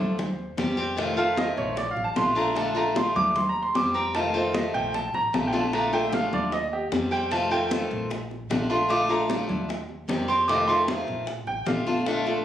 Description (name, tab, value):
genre	latin, Cuban son and guajira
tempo	152 BPM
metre	4/4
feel	straight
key	Bb major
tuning	A4 = 441 Hz
part	picked old ladder-braced acoustic guitar	accompaniment	0.0-12.4 s	C3 to G4	-26 LUFS	left 1 dB	none
part	clear baby grand piano	arpeggios	0.0-12.0 s	G4 to D6	-26 LUFS	right 2 dB	none
part	upright bass	bass	0.0-12.4 s	A1 to F2	-37 LUFS	equal	none
part	bongos	percussion	0.2-12.4 s	none	-35 LUFS	left 4 dB	none
part	congas	percussion	0.2-12.4 s	none	-31 LUFS	left 1 dB	none
room	moderate large studio reverb, RT60 0.8 s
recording	recorded on a phone in the room, studio reverb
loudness	-23 LUFS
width	side -11 dB against mid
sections	0.0-12.4 A section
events	grand piano solo 0.0-12.4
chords	0.2 Eb6; 1.0 F7; 1.8 Bbmaj7; 3.4 Eb6; 4.1 F7; 4.9 Bbmaj7; 6.5 Eb6; 7.3 F7; 8.1 Bbmaj7; 9.7 Eb6; 10.5 F7; 11.3 Bbmaj7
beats	0.18 0.58 | 0.98 1.37 1.77 2.17 | 2.56 2.96 3.35 3.75 | 4.15 4.54 4.94 5.34 | 5.73 6.13 6.52 6.92 | 7.32 7.71 8.11 8.50 | 8.90 9.30 9.69 10.09 | 10.48 10.88 11.27 11.67 | 12.06